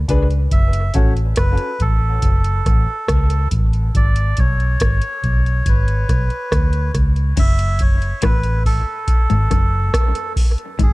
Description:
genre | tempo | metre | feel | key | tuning
dub reggae | 70 BPM | 4/4 | straight | F# minor | A4 = 438 Hz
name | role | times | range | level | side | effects
vintage muted fingered electric bass | bass | 0.0-10.9 s | F#1 to D2 | -17 LUFS | equal | none
warm grand piano | stabs | 0.1-1.1 s | C#4 to B4 | -27 LUFS | left 3 dB | dub echo
booming analog drum machine | drums | 0.1-10.9 s | crash cymbal, hi-hat, kick drum, rim click | -17 LUFS | equal | none
melodica | melody | 0.5-10.9 s | G#4 to E5 | -24 LUFS | right 1 dB | dub echo
semi-hollow electric guitar | riff | 7.4-10.9 s | F#2 to A2 | -26 LUFS | left 6 dB | analog chorus, dub echo
room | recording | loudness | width
digital ambience | dark, warm production | -14 LUFS | side -20 dB against mid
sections
0.0-7.4 A section; 7.4-10.9 B section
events
none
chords
0.0 G#dim; 0.5 F#m; 3.9 G#dim; 7.4 F#m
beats
| 0.52 1.37 2.23 3.09 | 3.95 4.80 5.66 6.52 | 7.37 8.23 9.09 9.94 | 10.79

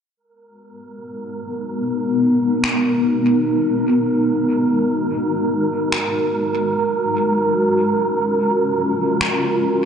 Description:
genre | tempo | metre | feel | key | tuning
ambient dub | free time | none | none | G# dorian | A4 = 440 Hz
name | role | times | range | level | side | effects
granular cloud pad | sustained chords | 1.2-9.9 s | G#3 to A#4 | -18 LUFS | left 1 dB | built-in reverb
wind-like tuned noise texture | texture | 0.8-9.9 s | A#4 | -22 LUFS | right 3 dB | built-in reverb
electronic finger snaps | drums | 2.6-9.4 s | none | -24 LUFS | left 1 dB | dub echo
room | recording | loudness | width
wet lush hall reverb, RT60 2.0 s | dark, warm production, nothing above 11.0 kHz | -16 LUFS | side -7 dB against mid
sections
0.2-9.9 A section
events
none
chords
0.2 G#m9; 6.7 F#maj9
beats
free time

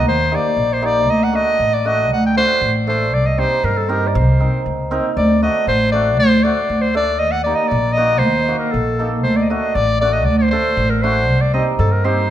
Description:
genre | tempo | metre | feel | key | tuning
klezmer | 118 BPM | 2/4 | straight | unclear | A4 = 441 Hz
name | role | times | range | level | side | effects
bright clarinet | melody | 0.0-12.3 s | A4 to G5 | -17 LUFS | equal | none
upright bass | bass | 0.0-12.3 s | A1 to G2 | -18 LUFS | equal | none
cimbalom | accompaniment | 0.3-12.2 s | A3 to Bb4 | -22 LUFS | right 1 dB | none
room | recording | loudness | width
moderate recital hall reverb, RT60 1.9 s | dark, warm production | -14 LUFS | side -11 dB against mid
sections
0.0-5.2 A section; 5.2-12.3 A section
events
none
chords
0.0 Eb; 1.1 D; 3.1 Cm; 5.2 D; 7.2 Eb5; 9.2 D; 11.3 Cm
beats
| 0.06 0.57 | 1.08 1.59 | 2.10 2.61 | 3.12 3.63 | 4.14 4.66 | 5.17 5.67 | 6.18 6.70 | 7.21 7.71 | 8.22 8.73 | 9.24 9.75 | 10.26 10.77 | 11.28 11.79

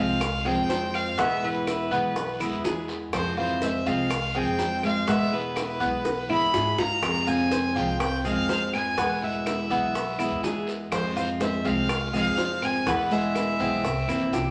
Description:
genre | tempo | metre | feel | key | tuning
latin, Cuban son and guajira | 123 BPM | 4/4 | straight | unclear | A4 = 440 Hz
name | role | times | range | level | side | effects
clear fiddle | melody | 0.0-14.5 s | B4 to B5 | -31 LUFS | equal | none
flamenco guitar | second line | 0.0-13.8 s | E3 to F4 | -33 LUFS | equal | none
picked steel-string acoustic guitar | accompaniment | 0.0-14.5 s | B2 to F4 | -32 LUFS | equal | none
Cuban tres | arpeggios | 0.0-14.5 s | B3 to C5 | -33 LUFS | equal | none
upright bass | bass | 0.0-14.5 s | Bb1 to G#2 | -38 LUFS | equal | none
bongos | percussion | 0.2-14.5 s | none | -35 LUFS | equal | none
claves | percussion | 0.2-14.3 s | none | -41 LUFS | equal | none
guiro | percussion | 0.2-14.5 s | none | -44 LUFS | equal | none
maracas | percussion | 0.2-14.5 s | none | -50 LUFS | equal | none
room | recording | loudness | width
wet large studio reverb, RT60 0.9 s | none | -26 LUFS | mono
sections
0.0-14.5 A section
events
drum fill 6.0-7.0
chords
0.0 Fm; 1.2 E; 3.1 Fm; 5.1 E; 7.0 Fm; 9.0 E; 10.9 Fm; 12.9 E; 13.8 C7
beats
0.21 0.69 | 1.18 1.67 2.15 2.64 | 3.13 3.62 4.10 4.59 | 5.08 5.56 6.05 6.54 | 7.02 7.51 8.00 8.48 | 8.97 9.46 9.95 10.43 | 10.92 11.41 11.89 12.38 | 12.87 13.36 13.84 14.33

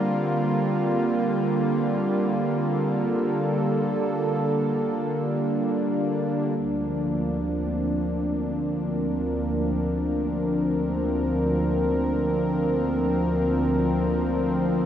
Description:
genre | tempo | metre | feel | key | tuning
ambient | free time | none | none | unclear | A4 = 440 Hz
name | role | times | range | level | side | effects
warm analog pad | solo | 0.0-14.9 s | D2 to Bb4 | -22 LUFS | equal | chorus, diffuse ambient delay
room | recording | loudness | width
wet huge ambient reverb, RT60 7.1 s | none | -22 LUFS | side -9 dB against mid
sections
0.0-6.6 A section; 6.6-14.9 B section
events
none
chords
0.0 C7sus4/D; 1.0 Gm9/D; 6.6 Bbadd9/D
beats
free time

